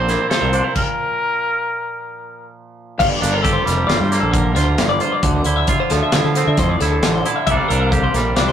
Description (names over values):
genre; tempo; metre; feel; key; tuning
math rock and midwest emo; 134 BPM; 5/4; straight; unclear; A4 = 440 Hz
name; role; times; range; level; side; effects
clear trumpet; melody; 0.0-2.5 s; Bb4 to C5; -20 LUFS; equal; none
twangy electric guitar; accompaniment; 0.0-8.5 s; G2 to A4; -22 LUFS; right 4 dB; none
twelve-string electric guitar; arpeggios; 0.0-8.5 s; A4 to F5; -21 LUFS; left 4 dB; tape echo
fuzz fingered electric bass; bass; 0.0-8.5 s; F1 to D3; -19 LUFS; equal; overdrive
modern studio drum kit; drums; 0.1-8.5 s; crash cymbal, hi-hat, kick drum, snare drum; -21 LUFS; equal; none
room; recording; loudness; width
light reverb; rough rehearsal-room recording; -15 LUFS; side -9 dB against mid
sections
0.0-3.0 A section; 3.0-8.5 B section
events
stop 0.8-3.0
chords
0.0 Fmaj7/Bb; 0.8 Bb5; 3.0 Gm7; 5.2 Dm9; 7.5 C7sus2